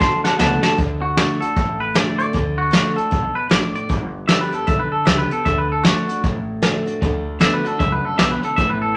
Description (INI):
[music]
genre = rockabilly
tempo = 154 BPM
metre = 4/4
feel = swing 61% on 8ths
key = D major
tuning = A4 = 439 Hz
[part]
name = twangy electric guitar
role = melody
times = 0.0-9.0 s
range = F#4 to C6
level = -23 LUFS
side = equal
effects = none
[part]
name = picked steel-string acoustic guitar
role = accompaniment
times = 0.0-9.0 s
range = F#2 to G4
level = -27 LUFS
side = equal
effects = none
[part]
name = electric guitar through a small old amp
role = riff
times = 0.0-0.8, 7.0-8.9 s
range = A2 to B3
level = -30 LUFS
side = equal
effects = none
[part]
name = upright bass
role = bass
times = 0.0-9.0 s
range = G1 to F#2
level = -30 LUFS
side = equal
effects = none
[part]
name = vintage brush drum kit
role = drums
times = 0.0-8.7 s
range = hi-hat, kick drum, snare drum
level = -21 LUFS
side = equal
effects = none
[sound]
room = moderate studio reverb, RT60 0.7 s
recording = none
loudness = -19 LUFS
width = mono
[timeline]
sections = 0.8-9.0 A section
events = drum fill 0.0-0.8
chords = 0.0 D; 3.9 G; 5.5 D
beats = 0.00 0.39 | 0.78 1.17 1.56 1.95 | 2.33 2.72 3.11 3.50 | 3.89 4.28 4.67 5.06 | 5.45 5.84 6.23 6.62 | 7.01 7.40 7.79 8.18 | 8.57 8.96